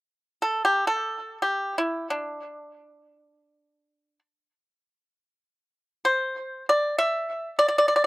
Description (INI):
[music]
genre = chinese traditional, Chinese solo plucked strings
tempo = free time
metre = none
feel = none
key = unclear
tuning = A4 = 440 Hz
[part]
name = pipa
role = solo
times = 0.4-8.1 s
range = D4 to E5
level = -22 LUFS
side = equal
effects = slapback echo
[sound]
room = little or no reverb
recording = recorded outdoors, with no room sound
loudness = -23 LUFS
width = side -20 dB against mid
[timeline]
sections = 0.0-8.1 A section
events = none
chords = none